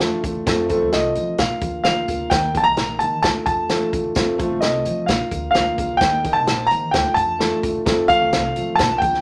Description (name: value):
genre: uptempo 1960s-style soul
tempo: 130 BPM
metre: 4/4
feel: straight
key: F mixolydian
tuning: A4 = 440 Hz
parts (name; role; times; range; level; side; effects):
- dark upright piano; accompaniment; 0.0-9.2 s; A3 to C5; -26 LUFS; equal; none
- upright bass; bass; 0.0-9.2 s; Bb1 to F3; -32 LUFS; equal; none
- natural country drum kit; drums; 0.0-9.2 s; hi-hat, kick drum, snare drum; -25 LUFS; equal; none
- congas; percussion; 0.0-9.1 s; none; -41 LUFS; equal; none
- tambourine; percussion; 0.0-9.1 s; none; -41 LUFS; equal; none
- warm grand piano; melody; 0.9-9.2 s; Eb5 to Bb5; -21 LUFS; equal; none
room: wet studio ambience, RT60 0.5 s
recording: none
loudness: -19 LUFS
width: mono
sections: 0.0-9.2 A section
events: none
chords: 0.5 F; 1.4 Bb; 2.3 Eb; 3.2 Dm; 4.2 F; 5.1 Bb; 6.0 Eb; 6.9 Dm; 7.9 F